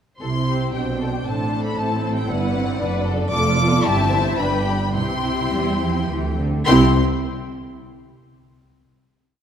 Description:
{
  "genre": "quick classical-period movement for string orchestra",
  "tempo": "103-117 BPM",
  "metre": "3/4",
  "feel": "rubato",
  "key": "C major",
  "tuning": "A4 = 438 Hz",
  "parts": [
    { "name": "warm symphonic violin section", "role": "melody", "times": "0.2-7.0 s", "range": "F#5 to D6", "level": "-25 LUFS", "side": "left 3 dB", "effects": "none" },
    { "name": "warm symphonic violin section", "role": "second line", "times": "0.2-7.0 s", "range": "G4 to G5", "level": "-27 LUFS", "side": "left 3 dB", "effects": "none" },
    { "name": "warm symphonic viola section", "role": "accompaniment", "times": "0.2-7.0 s", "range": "A3 to F4", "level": "-24 LUFS", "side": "right 1 dB", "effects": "none" },
    { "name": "rich studio cello section", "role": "bass", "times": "0.2-7.0 s", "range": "F2 to G3", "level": "-25 LUFS", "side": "right 1 dB", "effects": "none" },
    { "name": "rich symphonic double bass section", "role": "bass", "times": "0.2-7.0 s", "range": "F1 to E2", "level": "-24 LUFS", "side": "right 3 dB", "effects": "none" }
  ],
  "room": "wet concert hall reverb, RT60 2.2 s",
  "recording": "none",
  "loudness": "-18 LUFS",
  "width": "side -8 dB against mid",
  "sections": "0.2-6.7 A section; 6.7-8.3 final chord",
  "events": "none",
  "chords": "0.2 C; 1.3 Am; 1.8 D7; 3.3 Dm/F; 3.9 C/G; 4.4 G; 5.0 C",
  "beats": "| 0.22 0.74 1.26 | 1.78 2.29 2.81 | 3.32 3.85 4.39 | 4.96 5.54 6.10 | 6.67"
}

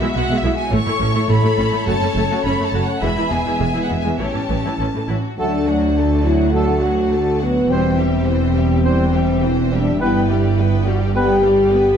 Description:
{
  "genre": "cinematic, heroic adventure film score",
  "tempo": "104 BPM",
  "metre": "4/4",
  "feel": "straight",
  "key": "A major, D major from 5.4 s",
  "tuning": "A4 = 440 Hz",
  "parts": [
    { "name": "rich symphonic violin section", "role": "second line", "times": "0.0-12.0 s", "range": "F#4 to E5", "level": "-27 LUFS", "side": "left 4 dB", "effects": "none" },
    { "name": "clear symphonic viola section", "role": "accompaniment", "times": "0.0-12.0 s", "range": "E3 to F#4", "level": "-25 LUFS", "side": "right 1 dB", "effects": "none" },
    { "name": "mellow French horn section", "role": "sustained chords", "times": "0.0-12.0 s", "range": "G3 to G4", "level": "-20 LUFS", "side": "left 3 dB", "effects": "none" },
    { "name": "clear symphonic cello section", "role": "bass", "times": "0.0-12.0 s", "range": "D2 to B2", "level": "-22 LUFS", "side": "right 2 dB", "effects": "none" },
    { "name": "warm symphonic violin section", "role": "melody", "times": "0.2-12.0 s", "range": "D5 to C#6", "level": "-26 LUFS", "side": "left 1 dB", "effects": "none" },
    { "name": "rich symphonic double bass section", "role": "bass", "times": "0.2-12.0 s", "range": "E1 to D2", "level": "-22 LUFS", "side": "right 3 dB", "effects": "none" },
    { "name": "mellow cor anglais", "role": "second line", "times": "5.4-11.4 s", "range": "A4 to C5", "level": "-27 LUFS", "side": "right 2 dB", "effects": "none" },
    { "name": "mellow flute section", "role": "second line", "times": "5.4-11.4 s", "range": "F#5 to G5", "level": "-29 LUFS", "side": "left 5 dB", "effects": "none" },
    { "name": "dark trombone section", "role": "sustained chords", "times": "5.4-11.3 s", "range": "F#3 to C4", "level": "-27 LUFS", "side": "right 3 dB", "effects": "none" }
  ],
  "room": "moderate scoring stage reverb, RT60 1.6 s",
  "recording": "dark, warm production",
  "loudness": "-15 LUFS",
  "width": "side -8 dB against mid",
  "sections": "0.0-5.4 A section; 5.4-12.0 B section",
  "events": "none",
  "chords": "0.0 Eadd9/B; 0.7 A; 1.9 F#m; 3.0 E; 4.2 A7; 5.4 D; 7.7 C/E; 10.0 G",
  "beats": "0.15 | 0.71 1.29 1.86 2.44 | 3.02 3.60 4.19 4.79 | 5.38 5.96 6.54 7.12 | 7.70 8.28 8.85 9.43 | 10.01 10.58 11.15 11.72"
}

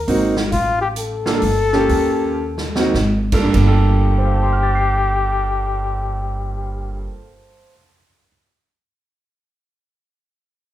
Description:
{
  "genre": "jazz, small-group swing and bop",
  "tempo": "95-136 BPM",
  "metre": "3/4",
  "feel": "swing 65% on 8ths",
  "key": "G minor",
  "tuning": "A4 = 439 Hz",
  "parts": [
    { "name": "breathy flugelhorn", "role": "melody", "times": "0.0-7.1 s", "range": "F4 to Bb4", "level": "-21 LUFS", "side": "left 4 dB", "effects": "none" },
    { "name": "upright bass", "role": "bass", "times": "0.0-7.1 s", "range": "G1 to Eb2", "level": "-20 LUFS", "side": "right 1 dB", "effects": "none" },
    { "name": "clear concert grand piano", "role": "accompaniment", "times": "0.1-8.3 s", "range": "G2 to C7", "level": "-21 LUFS", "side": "right 3 dB", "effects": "none" },
    { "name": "swinging big-band drum kit", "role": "drums", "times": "0.1-3.7 s", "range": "crash cymbal, hi-hat, kick drum, snare drum", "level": "-24 LUFS", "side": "equal", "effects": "none" }
  ],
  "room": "moderate large studio reverb, RT60 0.9 s",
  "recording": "band playing live in one room",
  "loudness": "-15 LUFS",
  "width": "side -13 dB against mid",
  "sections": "0.0-3.5 A section; 3.5-7.3 B section",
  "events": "slowing down 0.5-3.5; drum fill 2.4-2.9",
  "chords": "0.1 Ab9; 0.5 Gm9/A (rootless); 1.4 Gm7; 1.9 Eb9; 2.9 Absus2; 3.5 Gm7",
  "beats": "0.07 | 0.51 0.96 1.42 | 1.89 2.40 2.94 | 3.54 4.17 4.80 | 5.43 6.06 6.70"
}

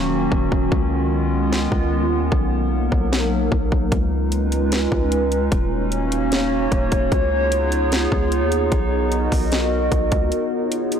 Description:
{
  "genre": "hip hop, atmospheric cloud-rap",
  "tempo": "150 BPM",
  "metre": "4/4",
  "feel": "half-time",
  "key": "unclear",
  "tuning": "A4 = 438 Hz",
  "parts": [
    { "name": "warbly tape-like pad", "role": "sustained chords", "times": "0.0-11.0 s", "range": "D#3 to D#5", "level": "-20 LUFS", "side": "equal", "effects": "chorus, built-in reverb, sidechain pumping" },
    { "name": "long sustained 808-style bass", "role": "bass", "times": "0.0-10.3 s", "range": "D#1 to D#2", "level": "-23 LUFS", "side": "equal", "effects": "none" },
    { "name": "trap drum kit", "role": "drums", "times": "0.3-11.0 s", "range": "hi-hat, kick drum, snare drum", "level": "-22 LUFS", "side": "equal", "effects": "none" }
  ],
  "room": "light reverb",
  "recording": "blown-out, overdriven recording, overdrive",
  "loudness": "-17 LUFS",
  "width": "side -8 dB against mid",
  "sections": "0.0-11.0 A section",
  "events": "break 0.0-3.9, 10.3-11.0",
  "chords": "0.0 D#m7; 0.7 C#9; 2.3 Bmaj7; 3.9 C#9; 5.5 D#m7; 7.1 C#9; 8.7 Bmaj7; 10.3 C#9",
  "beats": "0.32 | 0.72 1.12 1.52 1.92 | 2.32 2.72 3.12 3.52 | 3.92 4.32 4.72 5.12 | 5.52 5.92 6.32 6.72 | 7.12 7.52 7.92 8.32 | 8.72 9.12 9.52 9.92 | 10.32 10.72"
}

